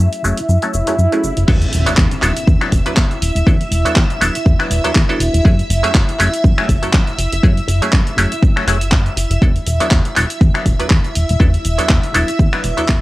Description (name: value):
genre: filtered disco house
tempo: 121 BPM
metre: 4/4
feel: swing 55% on 16ths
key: unclear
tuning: A4 = 440 Hz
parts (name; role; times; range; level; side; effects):
- muted clav; accompaniment; 0.0-12.9 s; F#3 to B4; -19 LUFS; equal; phaser, sidechain pumping, low-pass filter, cassette tape
- string machine, full ensemble; sustained chords; 0.0-13.0 s; E5 to E6; -23 LUFS; equal; ensemble chorus, vintage 12-bit sampler grit, sidechain pumping, low-pass filter, cassette tape
- plucky analog bass; bass; 0.0-13.0 s; E1 to F#2; -17 LUFS; equal; sidechain pumping, low-pass filter
- house drum kit; drums; 0.0-13.0 s; cabasa, crash cymbal, finger snaps, handclaps, hi-hat; -22 LUFS; equal; sidechain pumping on perc, cassette tape, sidechain pumping on hats, sidechain pumping on cymbals
- swell and impact; sound effects; 0.7-3.5 s; none; -24 LUFS; right 1 dB; none
- electronic kick drum; drums; 1.5-13.0 s; none; -13 LUFS; equal; cassette tape
room: light reverb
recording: home recording on cassette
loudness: -12 LUFS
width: side -18 dB against mid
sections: 0.0-1.5 A section; 1.5-13.0 B section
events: swell 0.7-1.5; drop 1.5-13.0; impact 1.5-3.5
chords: 0.0 F#m9; 1.5 E7sus4; 5.5 F#m9; 9.4 E7sus4